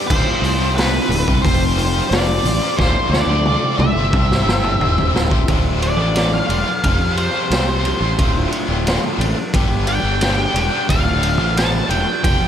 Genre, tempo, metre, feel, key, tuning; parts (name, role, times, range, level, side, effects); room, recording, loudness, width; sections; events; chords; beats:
psychedelic rock; 89 BPM; 4/4; straight; D dorian; A4 = 440 Hz
string machine, cellos; sustained chords; 0.0-12.5 s; C4 to C6; -28 LUFS; right 2 dB; ensemble chorus
biting overdriven guitar; riff; 0.0-12.5 s; D2 to C5; -23 LUFS; left 1 dB; harmonic tremolo
octave-fuzz lead guitar; melody; 0.1-12.5 s; B4 to A5; -21 LUFS; equal; distortion, tape echo
fuzz fingered electric bass; bass; 0.1-12.5 s; D1 to F2; -20 LUFS; equal; overdrive
raw garage drum kit; drums; 0.1-12.4 s; crash cymbal, hi-hat, kick drum, ride cymbal, snare drum, toms; -20 LUFS; equal
congas; percussion; 0.6-12.2 s; -31 LUFS; left 4 dB
light reverb, small room ambience; -14 LUFS; side -9 dB against mid
0.0-5.5 A section; 5.5-12.5 B section
drum fill 2.8-5.5; lead electric guitar solo 5.5-12.5
0.1 Dm7; 1.4 Fadd9; 2.8 Dm7; 4.1 C; 5.5 Dm7; 6.8 Fadd9; 8.2 Dm7; 9.5 Gadd9; 10.9 Dm7
| 0.10 0.77 1.44 2.11 | 2.78 3.45 4.13 4.80 | 5.47 6.15 6.83 7.50 | 8.18 8.86 9.53 10.21 | 10.89 11.56 12.24